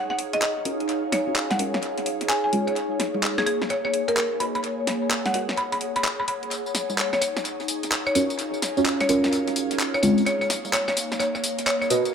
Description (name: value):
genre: UK garage, two-step garage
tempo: 128 BPM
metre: 4/4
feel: swing 64% on 16ths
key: Eb minor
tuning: A4 = 440 Hz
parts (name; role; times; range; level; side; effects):
- buzzing marimba with hard mallets; melody; 0.0-11.9 s; Ab4 to Cb6; -27 LUFS; equal; tape echo
- ethereal airy pad; texture; 0.0-12.1 s; Bb3 to Gb5; -28 LUFS; left 1 dB; ensemble chorus, built-in reverb, phaser
- garage drum kit; drums; 0.2-12.1 s; congas, handclaps, hi-hat, snare drum, tambourine; -27 LUFS; equal; high-pass filter on perc, studio reverb, high-pass filter on hats, high-pass filter on snare, tape echo
- deep mellow chord stab; stabs; 0.7-12.0 s; Ab3 to Eb5; -24 LUFS; right 1 dB; chorus, tape echo
room: moderate spring reverb, RT60 1.8 s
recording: echo-heavy mix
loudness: -22 LUFS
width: side -7 dB against mid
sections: 0.0-12.1 A section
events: build-up 0.0-12.1; filter sweep on synth stab 0.0-12.1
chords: 0.0 Ebm9; 2.5 Bbm9; 4.4 Abm9; 6.5 Ebm9; 10.0 Bbm9